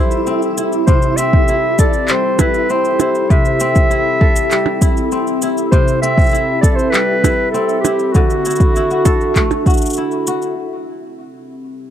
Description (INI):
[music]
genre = folktronica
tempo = 99 BPM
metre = 4/4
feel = straight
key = C lydian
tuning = A4 = 440 Hz
[part]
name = breathy clarinet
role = melody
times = 0.0-10.0 s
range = F#4 to E5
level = -18 LUFS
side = equal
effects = tape echo
[part]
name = warbly tape-like pad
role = sustained chords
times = 0.0-11.9 s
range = C4 to E5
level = -21 LUFS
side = left 2 dB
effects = chorus, built-in reverb
[part]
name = kora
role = arpeggios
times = 0.0-11.7 s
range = C3 to A4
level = -21 LUFS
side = left 1 dB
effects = tape echo
[part]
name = flickering grainy texture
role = texture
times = 0.0-10.6 s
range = E4 to E5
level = -25 LUFS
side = right 4 dB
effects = built-in reverb
[part]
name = electronic cabasa, handclaps and percussion blips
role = drums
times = 0.1-10.5 s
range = none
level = -20 LUFS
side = right 3 dB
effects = none
[part]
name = electronic kick drum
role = drums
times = 0.9-9.8 s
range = none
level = -13 LUFS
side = equal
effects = overdrive
[sound]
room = little or no reverb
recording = dry, close 1970s-style studio recording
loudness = -12 LUFS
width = side -10 dB against mid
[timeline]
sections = 0.0-10.6 A section; 10.6-11.9 B section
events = filter sweep on ambient pad 10.6-11.9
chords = 0.0 C6; 8.1 Dadd9; 10.6 C6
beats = 0.27 | 0.87 1.48 2.09 2.69 | 3.30 3.90 4.51 5.12 | 5.72 6.33 6.93 7.54 | 8.15 8.75 9.36 9.96 | 10.57 11.18 11.78